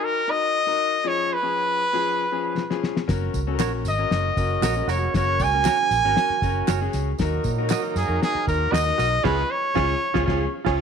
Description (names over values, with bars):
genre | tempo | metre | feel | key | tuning
uptempo 1960s-style soul | 117 BPM | 4/4 | straight | F# major | A4 = 436 Hz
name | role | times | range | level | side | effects
bright trumpet | melody | 0.0-10.5 s | G#4 to G#5 | -22 LUFS | right 1 dB | none
clear baby grand piano | accompaniment | 0.0-10.8 s | E#3 to A#4 | -29 LUFS | left 9 dB | none
cloth-damped thuddy drum kit | drums | 2.6-10.8 s | crash cymbal, hi-hat, kick drum, snare drum | -27 LUFS | left 3 dB | none
vintage muted fingered electric bass | bass | 3.1-10.8 s | E#1 to A#2 | -26 LUFS | right 1 dB | none
tambourine and handclaps | percussion | 3.1-9.1 s | none | -38 LUFS | right 1 dB | none
semi-hollow electric guitar | stabs | 3.6-10.8 s | E#4 to D#5 | -29 LUFS | right 14 dB | none
mellow horn section | second line | 4.1-10.8 s | C#3 to A#4 | -32 LUFS | right 14 dB | none
room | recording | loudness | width
light reverb, small room ambience | 1960s-style stereo with parts hard left and right | -20 LUFS | side -6 dB against mid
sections
0.0-10.8 A section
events
drum fill 2.6-3.1; band accent 9.2-10.8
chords
0.0 D#m; 1.1 C#/E#; 3.1 F#; 7.2 D#m; 9.2 C#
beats
0.03 0.54 | 1.05 1.56 2.07 2.58 | 3.09 3.61 4.12 4.63 | 5.14 5.65 6.17 6.68 | 7.19 7.70 8.22 8.73 | 9.24 9.76 10.27 10.79